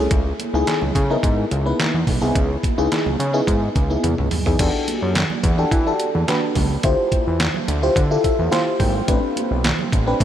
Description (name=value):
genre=early-eighties boogie funk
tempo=107 BPM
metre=4/4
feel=straight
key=unclear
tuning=A4 = 440 Hz
part: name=FM electric piano with soft pad layer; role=accompaniment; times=0.0-10.2 s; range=A3 to G5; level=-21 LUFS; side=left 1 dB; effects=chorus, phaser
part: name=fat analog bass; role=bass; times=0.0-10.2 s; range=G#1 to E3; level=-21 LUFS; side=equal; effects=none
part: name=detuned 8-bit digital drum machine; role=drums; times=0.1-10.2 s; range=crash cymbal, handclaps, hi-hat, kick drum, snare drum, toms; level=-22 LUFS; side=equal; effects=none
part: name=congas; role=percussion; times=0.4-10.1 s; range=none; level=-30 LUFS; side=right 8 dB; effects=none
room=moderate huge ambient reverb, RT60 8.3 s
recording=dreamy mix soaked in reverb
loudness=-17 LUFS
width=side -10 dB against mid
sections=0.0-4.6 A section; 4.6-10.2 B section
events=drum fill 4.0-4.6; FM electric piano fill 8.0-9.1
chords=0.1 C#m9; 4.6 Em11; 6.8 Dm11; 9.1 Am11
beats=| 0.11 0.67 1.23 1.79 | 2.35 2.91 3.48 4.04 | 4.60 5.16 5.72 6.28 | 6.84 7.40 7.96 8.52 | 9.08 9.64 10.20